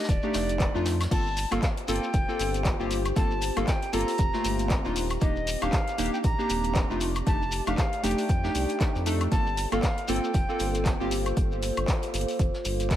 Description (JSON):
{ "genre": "deep house", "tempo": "117 BPM", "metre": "4/4", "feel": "swing 58% on 16ths", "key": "G minor", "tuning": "A4 = 441 Hz", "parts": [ { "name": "bright reedy jazz flute", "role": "melody", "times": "0.0-11.1 s", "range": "D5 to Bb5", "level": "-33 LUFS", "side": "equal", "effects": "ping-pong delay" }, { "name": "warm analog keys", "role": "stabs", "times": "0.0-11.2 s", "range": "A3 to A4", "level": "-30 LUFS", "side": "equal", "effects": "chorus, sidechain pumping, dub echo" }, { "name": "vintage brush drum kit", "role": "drums", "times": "0.0-13.0 s", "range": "hi-hat, snare drum", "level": "-42 LUFS", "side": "equal", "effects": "none" }, { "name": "round analog bass", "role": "bass", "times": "0.1-13.0 s", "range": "Eb1 to F2", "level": "-31 LUFS", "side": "equal", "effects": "sidechain pumping" }, { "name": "deep house drum kit", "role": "drums", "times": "0.1-13.0 s", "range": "crash cymbal, handclaps, hi-hat, woodblock", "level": "-34 LUFS", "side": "left 1 dB", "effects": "none" }, { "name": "electronic kick drum", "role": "drums", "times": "0.1-13.0 s", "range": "none", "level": "-26 LUFS", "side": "equal", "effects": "none" }, { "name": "shekere", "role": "percussion", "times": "0.1-13.0 s", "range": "none", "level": "-39 LUFS", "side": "left 2 dB", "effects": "none" }, { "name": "warbly tape-like pad", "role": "sustained chords", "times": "1.8-13.0 s", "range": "A3 to D6", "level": "-35 LUFS", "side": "equal", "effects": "chorus, built-in reverb, sidechain pumping" } ], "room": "light reverb, studio reverb", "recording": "none", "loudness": "-24 LUFS", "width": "side -12 dB against mid", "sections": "0.0-13.0 A section", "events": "none", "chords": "0.0 F13; 1.1 Gm11; 7.0 F13; 9.3 Gm11" }